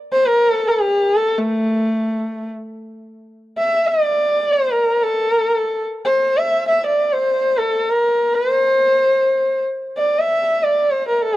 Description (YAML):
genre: indian classical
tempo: free time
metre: none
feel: none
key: A raga bhairavi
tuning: A4 = 441 Hz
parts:
  - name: dark sarangi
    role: solo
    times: 0.1-11.4 s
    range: A3 to E5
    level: -16 LUFS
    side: equal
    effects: none
room: small room ambience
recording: dry, close 1970s-style studio recording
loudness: -15 LUFS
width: side -16 dB against mid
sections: 0.0-3.4 A section; 3.4-11.4 A section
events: none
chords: none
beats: free time